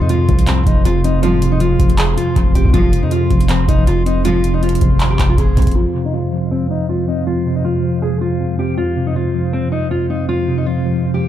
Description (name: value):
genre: hip hop, trap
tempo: 159 BPM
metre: 4/4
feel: half-time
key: F minor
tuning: A4 = 439 Hz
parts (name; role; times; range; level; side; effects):
- fingerpicked steel-string acoustic guitar; melody; 0.0-11.3 s; C4 to Ab4; -21 LUFS; left 1 dB; low-pass filter, analog delay
- mellow tine electric piano; accompaniment; 0.0-11.3 s; F2 to C4; -17 LUFS; equal; medium stereo tremolo, low-pass filter, analog delay
- glass harmonica; sustained chords; 0.0-11.3 s; Ab3 to C6; -29 LUFS; left 1 dB; low-pass filter
- long sustained 808-style bass; bass; 0.0-5.8 s; F1 to F2; -17 LUFS; equal; none
- booming analog drum machine; drums; 0.1-5.9 s; handclaps, hi-hat, kick drum; -15 LUFS; equal; none
- dark chamber string section; stabs; 1.2-4.5 s; C2 to F3; -26 LUFS; right 2 dB; none
room: light reverb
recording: echo-heavy mix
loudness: -13 LUFS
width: side -11 dB against mid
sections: 0.0-5.8 A section; 5.8-11.3 B section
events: filter sweep 5.8-11.3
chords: 0.0 Fm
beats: 0.10 0.48 0.85 | 1.23 1.61 1.99 2.36 | 2.74 3.12 3.50 3.87 | 4.25 4.63 5.00 5.38 | 5.76 6.14 6.51 6.89 | 7.27 7.65 8.02 8.40 | 8.78 9.15 9.53 9.91 | 10.29 10.66 11.04